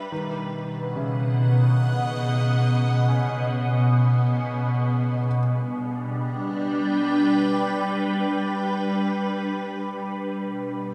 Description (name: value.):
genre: ambient.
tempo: free time.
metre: none.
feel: none.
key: G lydian.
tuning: A4 = 440 Hz.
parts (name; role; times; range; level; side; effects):
evolving wavetable pad; sustained chords; 0.0-10.9 s; B2 to G5; -24 LUFS; equal; ensemble chorus, built-in reverb, phaser, shimmer reverb.
felt-muted upright piano; arpeggios; 0.0-5.4 s; C#3 to E5; -36 LUFS; equal; diffuse ambient delay, shimmer reverb.
room: wet cathedral reverb, RT60 5.9 s.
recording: dreamy mix soaked in reverb.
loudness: -24 LUFS.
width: mono.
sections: 0.0-5.3 A section; 5.3-10.9 B section.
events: none.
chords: 0.1 B; 5.3 G; 10.4 N.C..